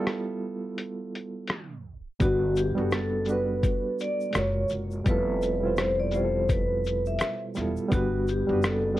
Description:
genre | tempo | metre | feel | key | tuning
lo-fi hip hop | 84 BPM | 4/4 | swing 59% on 16ths | G major | A4 = 441 Hz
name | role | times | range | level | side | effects
reed electric piano | accompaniment | 0.0-9.0 s | B2 to C5 | -30 LUFS | right 3 dB | fast tremolo, cassette tape, low-pass filter, plate reverb
lo-fi sampler-style drum kit | drums | 0.1-9.0 s | hi-hat, kick drum, rim click, shaker | -28 LUFS | left 1 dB | none
vibraphone with medium mallets | melody | 2.2-9.0 s | F#4 to E5 | -28 LUFS | left 1 dB | tape echo, plate reverb
upright bass | bass | 2.2-9.0 s | E1 to G1 | -30 LUFS | left 1 dB | none
tube shaker | percussion | 2.2-8.8 s | none | -53 LUFS | left 8 dB | none
room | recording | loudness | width
light reverb | cassette tape, tape stop | -24 LUFS | side -15 dB against mid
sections
0.0-2.2 A section; 2.2-9.0 B section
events
filter sweep on reed electric piano 0.0-2.2; break 0.8-2.2; tape stop 1.5-2.2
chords
0.0 Fmaj9#11; 2.2 Gmaj7; 4.3 F#maj9#11; 5.1 Fmaj9#11; 7.9 Gmaj7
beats
0.06 0.78 1.49 | 2.21 2.92 3.63 4.35 | 5.06 5.78 6.49 7.21 | 7.92 8.63

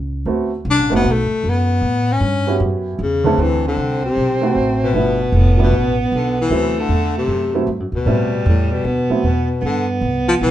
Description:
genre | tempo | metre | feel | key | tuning
jazz | 154 BPM | 4/4 | swing 66% on 8ths | D mixolydian | A4 = 442 Hz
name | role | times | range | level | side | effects
upright bass | bass | 0.0-10.5 s | F1 to A2 | -19 LUFS | equal | none
dark baby grand piano | accompaniment | 0.3-9.2 s | D3 to B4 | -20 LUFS | right 4 dB | none
breathy baritone saxophone | melody | 0.7-10.5 s | A2 to D4 | -19 LUFS | left 4 dB | none
clear alto saxophone | second line | 3.4-10.5 s | G3 to C4 | -21 LUFS | right 3 dB | none
room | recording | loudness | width
wet club reverb, RT60 0.7 s | heard from further back in the room, nothing above 11.0 kHz | -15 LUFS | side -12 dB against mid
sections
0.0-3.4 A section; 3.4-10.5 B section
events
baritone saxophone solo 0.0-3.4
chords
0.3 D13; 1.0 B5; 1.8 A13; 3.4 D13; 4.9 G13; 6.5 D13; 8.1 Am7; 8.8 D13; 9.6 G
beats
| 0.27 0.66 1.05 1.44 | 1.82 2.21 2.60 2.99 | 3.38 3.77 4.16 4.55 | 4.94 5.33 5.72 6.11 | 6.50 6.89 7.29 7.68 | 8.07 8.46 8.85 9.24 | 9.63 10.02 10.41

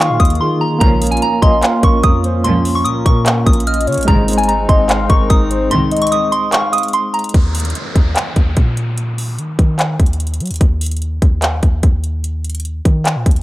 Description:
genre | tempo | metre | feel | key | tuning
hip hop, trap | 147 BPM | 4/4 | half-time | unclear | A4 = 440 Hz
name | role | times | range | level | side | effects
soft synth bell | melody | 0.0-7.3 s | Ab5 to F6 | -18 LUFS | right 1 dB | chorus, phaser, tape echo
warm velvety synth lead | second line | 0.0-6.9 s | Bb4 to F5 | -21 LUFS | left 2 dB | chorus, tape echo
overdriven tine electric piano | accompaniment | 0.0-7.4 s | Eb3 to F5 | -22 LUFS | right 2 dB | fast tremolo
hollow soft pad | sustained chords | 0.0-7.3 s | Eb3 to F4 | -22 LUFS | left 1 dB | chorus
warm 808-style bass | bass | 0.0-13.4 s | Ab1 to Gb3 | -18 LUFS | equal | none
trap drum kit | drums | 0.0-13.4 s | handclaps, hi-hat, kick drum | -14 LUFS | equal | none
dark symphonic string section | stabs | 0.8-6.0 s | C2 to F3 | -21 LUFS | right 1 dB | tape echo
downlifter | sound effects | 7.3-10.6 s | none | -29 LUFS | equal | none
room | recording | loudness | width
little or no reverb | dry, gritty hardware recording | -12 LUFS | side -16 dB against mid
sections
0.0-7.3 A section; 7.3-13.4 B section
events
break 0.4-0.8, 5.7-7.3, 7.3-13.4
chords
0.0 Ebmadd9; 0.8 Bbm; 4.1 Ab; 7.3 Eb5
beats
0.00 0.40 | 0.81 1.22 1.63 2.04 | 2.44 2.85 3.26 3.67 | 4.08 4.49 4.89 5.30 | 5.71 6.12 6.53 6.93 | 7.34 7.75 8.16 8.57 | 8.97 9.38 9.79 10.20 | 10.61 11.02 11.42 11.83 | 12.24 12.65 13.06

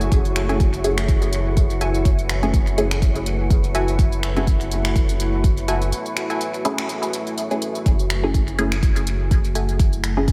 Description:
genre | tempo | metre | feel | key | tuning
dub techno | 124 BPM | 4/4 | swing 55% on 16ths | F# minor | A4 = 440 Hz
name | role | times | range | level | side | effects
deep dark ambient pad | sustained chords | 0.0-10.3 s | A3 to B4 | -30 LUFS | equal | chorus, built-in reverb, sidechain pumping
filtered dub chord stab | stabs | 0.0-10.3 s | A3 to G#4 | -28 LUFS | equal | phaser, sidechain pumping, dub echo
soft dub sub bass | bass | 0.0-10.3 s | F#1 | -26 LUFS | equal | tube saturation, sidechain pumping
deep house drum kit | drums | 0.0-10.3 s | finger snaps, hi-hat | -32 LUFS | equal | studio ambience, dub echo
wind-like tuned noise texture | texture | 0.0-7.9 s | C#5 | -39 LUFS | equal | built-in reverb, sidechain pumping
electronic kick drum | drums | 0.1-10.3 s | none | -20 LUFS | equal | studio ambience
warbly dusty pluck | riff | 0.5-10.2 s | F#4 to G#5 | -33 LUFS | equal | chorus, sidechain pumping, dub echo
room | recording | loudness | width
moderate church reverb, RT60 3.1 s | dreamy mix soaked in reverb | -20 LUFS | mono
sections
0.0-7.9 A section; 7.9-10.3 A section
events
break 5.9-7.9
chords
0.0 F#m9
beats
| 0.12 0.60 1.08 1.57 | 2.05 2.54 3.02 3.50 | 3.99 4.47 4.96 5.44 | 5.92 6.41 6.89 7.38 | 7.86 8.34 8.83 9.31 | 9.79 10.28

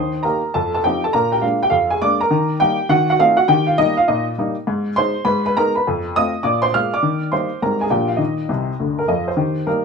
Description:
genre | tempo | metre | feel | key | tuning
jazz, stride piano | 204 BPM | 4/4 | swing 66% on 8ths | Eb major | A4 = 439 Hz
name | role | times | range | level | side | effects
warm upright piano | solo | 0.0-9.8 s | C2 to F6 | -16 LUFS | equal | none
room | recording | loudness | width
moderate club reverb, RT60 0.5 s | minimal, uncompressed stereo recording | -16 LUFS | side -5 dB against mid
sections
0.0-9.4 A section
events
upright piano fill 8.5-9.4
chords
0.0 Eb; 0.5 F7; 1.1 Bb7; 2.3 Eb; 2.9 Ebdim7; 3.5 Eb; 4.7 Ab; 5.2 Abm; 5.8 F7; 6.4 Bb7; 7.0 Eb; 7.6 Abmaj7; 7.9 Bb; 8.2 Cmadd9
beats
0.24 0.54 0.83 | 1.12 1.42 1.72 2.01 | 2.30 2.60 2.89 3.19 | 3.48 3.78 4.07 4.37 | 4.66 4.96 5.25 5.54 | 5.84 6.13 6.43 6.72 | 7.02 7.31 7.61 7.90 | 8.19 8.49 8.78 9.08 | 9.37 9.66

